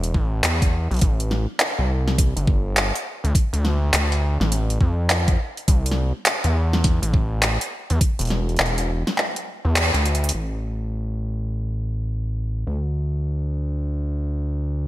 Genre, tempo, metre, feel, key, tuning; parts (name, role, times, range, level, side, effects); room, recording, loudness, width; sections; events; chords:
glitch hop; 103 BPM; 4/4; swing 63% on 16ths; A4 = 438 Hz
gritty driven synth bass; bass; 0.0-14.9 s; E1 to F2; -21 LUFS; equal; overdrive
dubstep drum kit; drums; 0.0-10.4 s; handclaps, hi-hat, snare drum; -23 LUFS; equal; overdrive, gated reverb
electronic kick drum; drums; 0.1-8.2 s; -19 LUFS; equal; overdrive
light reverb; bright 1980s-style digital production; -19 LUFS; side -15 dB against mid
0.0-10.3 A section; 10.3-14.9 B section
kick drops out 9.2-10.3; band accent 9.8; drum fill 10.0